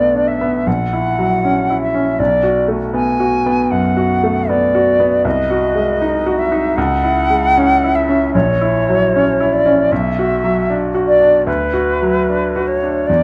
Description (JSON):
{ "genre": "classical, romantic duo for flute and grand piano", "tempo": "78 BPM", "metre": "4/4", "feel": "uneven beats, rubato", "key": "unclear", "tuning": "A4 = 440 Hz", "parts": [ { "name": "silver concert flute", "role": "melody", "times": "0.0-13.2 s", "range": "B4 to G#5", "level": "-18 LUFS", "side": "equal", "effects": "none" }, { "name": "bright grand piano", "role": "accompaniment", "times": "0.0-13.2 s", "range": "A#1 to F#4", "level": "-18 LUFS", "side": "equal", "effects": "none" } ], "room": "moderate stone room reverb, RT60 1.4 s", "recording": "dark, warm production", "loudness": "-15 LUFS", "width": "mono", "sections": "0.0-13.2 A section", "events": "none", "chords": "0.0 Bm7; 0.7 F#7/A#; 2.2 Bm7; 5.3 G#7/B#; 6.8 C#m; 8.3 F#7/A#; 9.9 Bm; 11.5 Bm/D" }